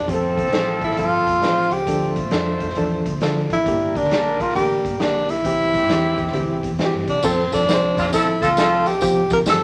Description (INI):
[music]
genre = uptempo 1960s-style soul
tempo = 134 BPM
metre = 4/4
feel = swing 65% on 8ths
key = F major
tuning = A4 = 440 Hz
[part]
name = breathy tenor saxophone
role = melody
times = 0.0-9.6 s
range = C4 to Bb4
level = -22 LUFS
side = equal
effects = none
[part]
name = hollow-body short-scale fingered electric bass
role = bass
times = 0.0-9.6 s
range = F1 to D3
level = -32 LUFS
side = equal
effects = none
[part]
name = warm horn section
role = second line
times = 0.1-8.9 s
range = C3 to C5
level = -30 LUFS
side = equal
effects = none
[part]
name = barky reed electric piano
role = accompaniment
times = 0.1-9.6 s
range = D3 to A5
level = -25 LUFS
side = equal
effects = overdrive, fast tremolo
[part]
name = raw garage drum kit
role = drums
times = 0.1-9.6 s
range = crash cymbal, hi-hat, kick drum, snare drum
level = -28 LUFS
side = equal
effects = none
[part]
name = tambourine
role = percussion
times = 7.2-9.6 s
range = none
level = -35 LUFS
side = equal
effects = none
[sound]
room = moderate studio reverb, RT60 0.6 s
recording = none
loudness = -20 LUFS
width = mono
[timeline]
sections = 0.0-7.2 A section; 7.2-9.6 B section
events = none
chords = 0.1 F; 1.9 Dm; 3.7 Gm; 5.4 C; 7.2 F; 9.0 Csus4